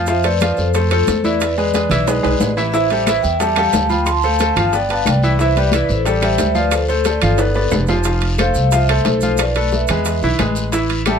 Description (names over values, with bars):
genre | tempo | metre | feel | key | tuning
latin, salsa | 180 BPM | 4/4 | straight | unclear | A4 = 440 Hz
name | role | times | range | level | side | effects
bright grand piano | accompaniment | 0.0-11.2 s | E3 to F5 | -20 LUFS | equal | none
upright bass | bass | 0.0-11.2 s | F1 to F2 | -19 LUFS | right 1 dB | none
vibraphone with soft mallets | melody | 0.1-11.2 s | F4 to C6 | -19 LUFS | moving between left 7 dB and right 2 dB | auto-pan
bongos | percussion | 0.1-11.2 s | none | -27 LUFS | left 4 dB | none
congas | percussion | 0.1-11.2 s | none | -24 LUFS | left 2 dB | none
guiro | percussion | 0.1-11.2 s | none | -31 LUFS | left 4 dB | none
maracas | percussion | 0.1-11.2 s | none | -31 LUFS | right 7 dB | none
timbales | percussion | 0.2-11.2 s | none | -26 LUFS | right 9 dB | none
claves | percussion | 3.1-11.2 s | none | -30 LUFS | left 6 dB | none
room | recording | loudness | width
little or no reverb | close, detailed microphones | -14 LUFS | side -7 dB against mid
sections
0.0-8.1 A section; 8.1-11.2 B section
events
drum fill 2.1-2.7, 7.4-8.1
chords
0.1 Fmaj7; 1.4 E7; 2.7 Am7; 4.1 Dm7; 4.7 G; 5.4 Cmaj7; 6.1 Am7; 6.7 Dm7; 7.4 G7; 8.1 Fmaj7; 9.4 Bm7b5; 10.1 E